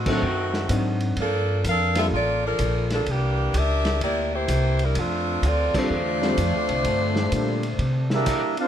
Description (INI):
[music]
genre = jazz, big band swing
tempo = 127 BPM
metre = 4/4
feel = swing 66% on 8ths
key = F major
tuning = A4 = 438 Hz
[part]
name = clear saxophone section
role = melody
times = 0.0-8.3 s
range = Eb3 to F5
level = -24 LUFS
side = equal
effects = none
[part]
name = upright bass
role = bass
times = 0.0-8.3 s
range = A1 to C3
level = -25 LUFS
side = equal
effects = none
[part]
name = warm concert grand piano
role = accompaniment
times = 0.1-2.1, 5.7-7.6 s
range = F#3 to C5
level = -27 LUFS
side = equal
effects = none
[part]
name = vintage drum kit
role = drums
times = 0.1-8.7 s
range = crash cymbal, hi-hat, kick drum, ride cymbal, snare drum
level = -31 LUFS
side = equal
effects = none
[part]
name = dark trombone section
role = second line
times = 5.8-8.7 s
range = D3 to F4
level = -29 LUFS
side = left 2 dB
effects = none
[part]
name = clear trumpet section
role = melody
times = 8.1-8.7 s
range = D4 to F5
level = -24 LUFS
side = right 1 dB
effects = none
[sound]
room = little or no reverb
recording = close, detailed microphones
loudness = -20 LUFS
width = side -10 dB against mid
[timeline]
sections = 0.0-8.7 A section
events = band accent 0.0, 5.7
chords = 0.0 D7b9; 1.2 Gm9; 3.1 C9; 5.0 F6; 6.9 Gm7; 7.8 C13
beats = 0.22 0.69 | 1.17 1.64 2.11 2.59 | 3.06 3.53 4.01 4.48 | 4.96 5.43 5.90 6.38 | 6.85 7.33 7.80 8.27